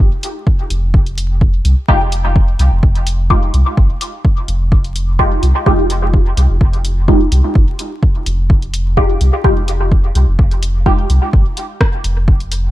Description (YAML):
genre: dub techno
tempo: 127 BPM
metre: 4/4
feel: straight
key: F minor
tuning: A4 = 440 Hz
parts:
  - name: round analog bass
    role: bass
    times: 0.0-12.7 s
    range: F1 to C2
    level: -14 LUFS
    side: equal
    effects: sidechain pumping
  - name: punchy analog drum machine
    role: drums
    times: 0.2-12.6 s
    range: hi-hat, rim click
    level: -22 LUFS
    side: equal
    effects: none
  - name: electronic kick drum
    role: drums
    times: 0.5-12.4 s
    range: none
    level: -12 LUFS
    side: equal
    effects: none
  - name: filtered dub chord stab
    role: stabs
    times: 1.9-11.2 s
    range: Ab3 to G4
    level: -19 LUFS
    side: equal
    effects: phaser, sidechain pumping, dub echo
room: digital ambience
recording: dark, warm production, vinyl crackle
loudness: -11 LUFS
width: side -15 dB against mid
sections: 0.0-12.7 A section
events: none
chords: 0.0 Fm9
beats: 0.47 | 0.94 1.41 1.89 2.36 | 2.83 3.30 3.77 4.25 | 4.72 5.19 5.66 6.14 | 6.61 7.08 7.55 8.03 | 8.50 8.97 9.44 9.92 | 10.39 10.86 11.33 11.81 | 12.28